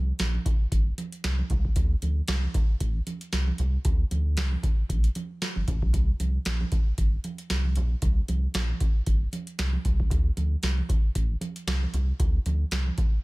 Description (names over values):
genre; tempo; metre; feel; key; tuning
early-eighties boogie funk; 115 BPM; 4/4; swing 56% on 16ths; unclear; A4 = 440 Hz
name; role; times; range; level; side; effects
saturated sub bass; bass; 0.0-12.9 s; G1 to D2; -26 LUFS; equal; none
booming analog drum machine; drums; 0.2-13.2 s; hi-hat, kick drum, snare drum; -26 LUFS; equal; none
congas; percussion; 0.2-13.1 s; none; -37 LUFS; right 3 dB; none
room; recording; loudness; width
little or no reverb; none; -24 LUFS; side -22 dB against mid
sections
0.0-13.2 A section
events
none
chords
none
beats
0.20 0.72 1.24 | 1.76 2.28 2.81 3.33 | 3.85 4.37 4.89 5.41 | 5.94 6.46 6.98 7.50 | 8.02 8.54 9.07 9.59 | 10.11 10.63 11.15 11.68 | 12.20 12.72